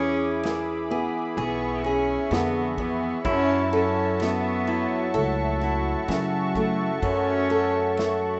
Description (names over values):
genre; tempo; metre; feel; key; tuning
acoustic folk-pop ballad; 64 BPM; 4/4; straight; F# minor; A4 = 440 Hz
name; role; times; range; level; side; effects
warm cello; melody; 0.0-8.4 s; A3 to C#4; -30 LUFS; equal; none
pedal steel guitar; second line; 0.0-8.4 s; E4 to G#4; -38 LUFS; equal; none
fingerpicked steel-string acoustic guitar; accompaniment; 0.0-8.4 s; F#2 to A4; -29 LUFS; equal; none
brassy analog pad; sustained chords; 0.0-8.4 s; F#4 to D6; -32 LUFS; equal; chorus
upright bass; bass; 0.0-8.4 s; B1 to F#3; -34 LUFS; equal; none
unplugged drum kit; drums; 0.4-8.2 s; kick drum, ride cymbal, snare drum; -38 LUFS; equal; none
room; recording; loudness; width
wet studio reverb, RT60 0.6 s; rough home demo mix, nothing above 7.9 kHz; -25 LUFS; mono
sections
0.0-8.4 A section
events
none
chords
0.0 E7; 3.2 F#m7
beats
0.43 1.37 2.31 | 3.25 4.19 5.14 6.08 | 7.03 7.98